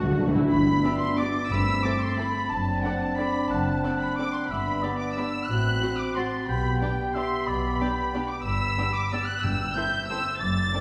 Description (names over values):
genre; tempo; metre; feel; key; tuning
classical; 182 BPM; 3/4; uneven beats, rubato; G major; A4 = 440 Hz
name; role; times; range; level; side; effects
muted studio violin section; melody; 0.0-10.8 s; F#5 to A6; -32 LUFS; equal; none
muted studio violin section; second line; 0.0-10.8 s; F#4 to F#5; -44 LUFS; equal; none
warm oboe; second line; 0.0-10.8 s; C5 to B5; -35 LUFS; equal; none
muted studio viola section; accompaniment; 0.0-10.8 s; B3 to F#4; -39 LUFS; equal; none
muted studio cello section; bass; 0.0-10.7 s; F#2 to F#4; -40 LUFS; equal; none
muted studio double bass section; bass; 0.0-10.7 s; F#1 to D2; -33 LUFS; equal; none
timpani; percussion; 0.0-2.0, 9.4-9.9 s; G2 to D3; -28 LUFS; equal; none
warm French horn section; sustained chords; 0.2-10.8 s; A3 to C5; -33 LUFS; equal; none
room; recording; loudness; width
wet scoring stage reverb, RT60 1.9 s; heard from further back in the room; -26 LUFS; mono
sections
0.5-10.8 A section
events
timpani fill 0.0-0.5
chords
0.0 D; 0.5 G; 1.5 Am7/G; 2.5 D7/F#; 4.5 G; 5.5 F#dim/A; 6.5 G/B; 8.5 G; 9.4 Am7/G